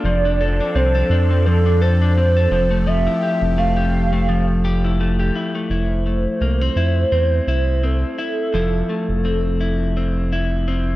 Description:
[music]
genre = indie pop, bedroom pop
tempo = 85 BPM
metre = 4/4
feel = swing 55% on 16ths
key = F major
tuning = A4 = 440 Hz
[part]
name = hollow clarinet-like synth lead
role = melody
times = 0.0-11.0 s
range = A4 to F5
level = -23 LUFS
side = right 2 dB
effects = lush chorus
[part]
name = electric guitar at the edge of break-up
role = accompaniment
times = 0.0-11.0 s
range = F3 to D5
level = -22 LUFS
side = left 2 dB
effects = wide subtle chorus, vibrato effect
[part]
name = phased analog pad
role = sustained chords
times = 0.0-5.7 s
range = F3 to A4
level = -30 LUFS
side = right 1 dB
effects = phaser, chorus
[part]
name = round analog bass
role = bass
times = 0.0-11.0 s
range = F1 to F2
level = -18 LUFS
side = equal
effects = none
[sound]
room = digital ambience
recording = none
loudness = -16 LUFS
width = side -16 dB against mid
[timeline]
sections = 0.0-5.7 A section; 5.7-11.0 B section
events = none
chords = 0.0 F6; 2.5 Fmaj9; 5.7 Fmaj7

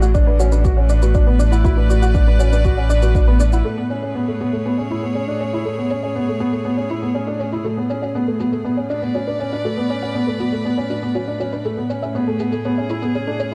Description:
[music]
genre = piano and strings electronica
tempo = 120 BPM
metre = 4/4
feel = straight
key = A major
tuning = A4 = 440 Hz
[part]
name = bright string quartet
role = sustained chords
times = 0.0-13.5 s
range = A2 to D5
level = -27 LUFS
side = equal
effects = sidechain pumping
[part]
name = soft round pluck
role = arpeggios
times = 0.0-13.4 s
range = F#4 to D6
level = -32 LUFS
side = equal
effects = chorus, sidechain pumping, tape echo
[part]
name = felt-muted upright piano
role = riff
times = 0.0-13.5 s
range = A3 to F#4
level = -24 LUFS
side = equal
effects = low-pass filter
[part]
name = warm sub bass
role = bass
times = 0.0-3.6 s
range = A1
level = -18 LUFS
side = equal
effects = sidechain pumping
[part]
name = shaker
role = drums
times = 0.0-13.5 s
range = none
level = -43 LUFS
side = equal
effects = low-pass filter on perc, low-pass filter on room
[part]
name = electronic kick drum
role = drums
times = 0.1-3.2 s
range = none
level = -19 LUFS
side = equal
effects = none
[sound]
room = light reverb, digital ambience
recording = dark, warm production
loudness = -19 LUFS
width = mono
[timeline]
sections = 0.0-3.7 A section; 3.7-13.5 B section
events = filter sweep on felt piano 3.7-13.5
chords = 0.0 Bm/A; 3.7 Amaj7; 7.7 Bm/A; 11.7 Amaj7

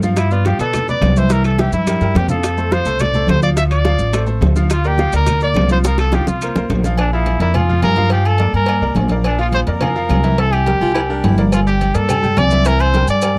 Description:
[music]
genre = latin, salsa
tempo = 211 BPM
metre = 4/4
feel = straight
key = unclear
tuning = A4 = 438 Hz
[part]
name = bright grand piano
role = accompaniment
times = 0.0-13.3 s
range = E3 to G5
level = -26 LUFS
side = equal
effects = none
[part]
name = upright bass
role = bass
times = 0.0-13.4 s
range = G1 to B2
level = -18 LUFS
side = equal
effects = none
[part]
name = congas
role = percussion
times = 0.0-13.4 s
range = none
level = -25 LUFS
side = equal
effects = none
[part]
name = maracas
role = percussion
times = 0.0-7.0, 11.5-13.4 s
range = none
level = -36 LUFS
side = equal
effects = none
[part]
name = clear trumpet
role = melody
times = 0.2-13.4 s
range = D4 to E5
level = -22 LUFS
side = equal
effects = none
[part]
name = bongos and cowbell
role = percussion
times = 0.2-13.4 s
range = none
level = -26 LUFS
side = equal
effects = none
[part]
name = claves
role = percussion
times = 0.2-13.4 s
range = none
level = -37 LUFS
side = equal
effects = none
[part]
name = timbales and agogo bells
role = percussion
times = 0.2-13.4 s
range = none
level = -29 LUFS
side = equal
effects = none
[part]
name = warm baritone saxophone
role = second line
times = 10.8-11.5 s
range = D4 to F4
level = -23 LUFS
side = equal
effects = none
[sound]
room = little or no reverb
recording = dry, close 1970s-style studio recording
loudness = -16 LUFS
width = mono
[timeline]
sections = 0.0-7.0 A section; 7.0-13.4 B section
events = drum fill 1.7-2.4, 5.8-7.0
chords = 0.2 G7; 1.3 C7; 2.4 F6; 3.6 Dm7; 4.7 Gm7/D; 5.8 C7sus4; 7.0 Bb5; 8.1 Gm7; 9.3 Bb; 10.4 C7

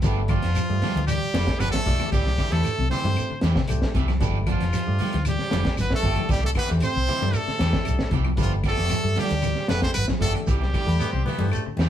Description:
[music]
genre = afrobeat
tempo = 115 BPM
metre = 4/4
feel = straight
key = G mixolydian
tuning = A4 = 439 Hz
[part]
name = barky tine electric piano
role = accompaniment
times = 0.0-11.7 s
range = A3 to D5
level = -35 LUFS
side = left 3 dB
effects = overdrive
[part]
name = clean electric guitar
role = arpeggios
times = 0.0-11.8 s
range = C3 to G3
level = -31 LUFS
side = left 3 dB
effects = none
[part]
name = electric guitar at the edge of break-up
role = stabs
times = 0.0-11.9 s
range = E3 to G4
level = -32 LUFS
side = right 6 dB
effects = none
[part]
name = hollow-body short-scale fingered electric bass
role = bass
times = 0.0-11.9 s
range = F1 to G2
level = -25 LUFS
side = equal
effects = none
[part]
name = crunchy breakbeat drum kit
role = drums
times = 0.0-11.9 s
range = hi-hat, kick drum, snare drum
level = -27 LUFS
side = equal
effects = none
[part]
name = shekere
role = percussion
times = 0.0-11.9 s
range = none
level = -32 LUFS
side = right 3 dB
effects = none
[part]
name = brilliant trumpet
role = melody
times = 0.3-11.5 s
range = F4 to C5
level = -28 LUFS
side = equal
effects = none
[part]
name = warm trombone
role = second line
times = 0.3-11.5 s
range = F3 to C4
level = -33 LUFS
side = right 4 dB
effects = none
[part]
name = claves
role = percussion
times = 0.3-11.7 s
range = none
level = -41 LUFS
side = left 4 dB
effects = none
[part]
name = congas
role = percussion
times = 0.7-11.9 s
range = none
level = -34 LUFS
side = left 2 dB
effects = none
[part]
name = breathy baritone saxophone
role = second line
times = 11.0-11.9 s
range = G3 to C4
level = -32 LUFS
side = left 3 dB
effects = none
[sound]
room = moderate studio reverb, RT60 0.6 s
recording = band playing live in one room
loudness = -21 LUFS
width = side -10 dB against mid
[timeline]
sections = 0.0-11.9 A section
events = none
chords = 0.0 G7; 2.1 C6; 4.2 G7; 6.3 C6; 8.4 G7; 10.5 C6

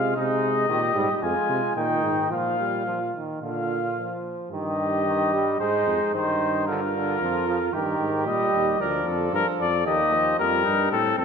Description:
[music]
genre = classical, imitative canzona for brass ensemble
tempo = 112 BPM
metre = 4/4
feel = straight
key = Eb major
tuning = A4 = 440 Hz
[part]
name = mellow cornet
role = melody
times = 0.0-11.2 s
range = A4 to Ab5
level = -25 LUFS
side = left 5 dB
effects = none
[part]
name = mellow trumpet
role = second line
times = 0.0-11.2 s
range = C4 to Bb4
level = -29 LUFS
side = right 7 dB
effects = none
[part]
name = clear trombone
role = accompaniment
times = 0.0-11.2 s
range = D3 to Bb3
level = -28 LUFS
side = right 2 dB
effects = none
[part]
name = mellow bass trombone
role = bass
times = 0.0-11.2 s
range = D2 to C3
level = -30 LUFS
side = right 1 dB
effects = none
[sound]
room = wet concert hall reverb, RT60 1.8 s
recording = minimal, uncompressed stereo recording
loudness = -22 LUFS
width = side -6 dB against mid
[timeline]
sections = 0.0-4.5 A section; 4.5-11.2 B section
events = none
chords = 0.2 Ab/C; 1.2 Fm; 2.3 Bbsus4; 3.4 Bb; 4.5 Eb/G; 5.6 Ab; 6.7 Bb; 7.7 Eb/G; 8.8 Bb/D; 9.9 Eb

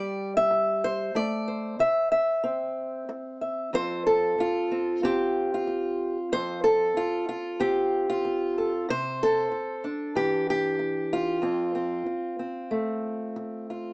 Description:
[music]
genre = folk, solo fingerstyle acoustic guitar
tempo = 94 BPM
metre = 4/4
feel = straight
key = F major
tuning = A4 = 440 Hz
[part]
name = fingerpicked acoustic archtop guitar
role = solo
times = 0.0-13.9 s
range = F2 to E5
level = -24 LUFS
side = equal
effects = none
[sound]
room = light reverb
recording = small speaker sound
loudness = -24 LUFS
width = side -26 dB against mid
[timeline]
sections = 0.0-13.9 A section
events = none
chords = 0.0 Em7; 1.2 Am; 3.7 F; 8.9 Cadd9; 11.4 F

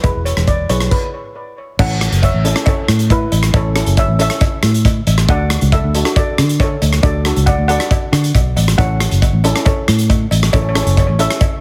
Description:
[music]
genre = calypso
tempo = 137 BPM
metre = 4/4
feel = straight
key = A major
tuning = A4 = 440 Hz
[part]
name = steel pan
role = melody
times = 0.0-11.6 s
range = E4 to F#5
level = -24 LUFS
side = equal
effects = delay
[part]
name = steel pan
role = accompaniment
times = 0.0-11.6 s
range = C#4 to B4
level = -26 LUFS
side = equal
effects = none
[part]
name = fingered electric bass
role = bass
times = 0.0-11.3 s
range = E1 to D3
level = -17 LUFS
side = equal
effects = none
[part]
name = modern studio drum kit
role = drums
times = 0.0-11.5 s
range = crash cymbal, hi-hat, kick drum, rim click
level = -19 LUFS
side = equal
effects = none
[part]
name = cowbell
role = percussion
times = 0.0-11.5 s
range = none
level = -28 LUFS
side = equal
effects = none
[sound]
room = little or no reverb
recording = heavily compressed radio sound, multiband compression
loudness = -14 LUFS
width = mono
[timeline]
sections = 0.0-1.8 A section; 1.8-11.6 B section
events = stop 0.9-1.8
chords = 0.0 E; 1.8 A; 5.3 D; 8.8 A

